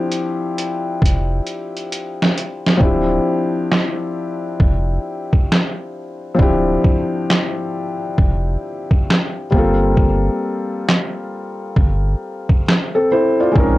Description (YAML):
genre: lo-fi hip hop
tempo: 67 BPM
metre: 4/4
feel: swing 64% on 16ths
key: D minor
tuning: A4 = 440 Hz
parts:
  - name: felt-muted upright piano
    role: accompaniment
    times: 0.0-13.8 s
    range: F3 to D5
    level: -19 LUFS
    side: left 1 dB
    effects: none
  - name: trip hop sampler-style drum kit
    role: drums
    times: 0.1-13.8 s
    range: handclaps, hi-hat, kick drum, snare drum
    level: -15 LUFS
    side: equal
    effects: overdrive
  - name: saturated sub bass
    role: bass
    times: 1.0-13.8 s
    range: D1 to Bb1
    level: -19 LUFS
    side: equal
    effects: none
room: light reverb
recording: cassette tape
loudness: -15 LUFS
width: side -17 dB against mid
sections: 0.0-2.8 A section; 2.8-13.8 A section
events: drum fill 0.0-2.8; hi-hats muted 2.8-13.8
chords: 0.0 Dm11; 9.5 Gm11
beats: 0.12 1.02 1.91 | 2.81 3.70 4.60 5.49 | 6.39 7.29 8.18 9.08 | 9.97 10.87 11.76 12.66 | 13.55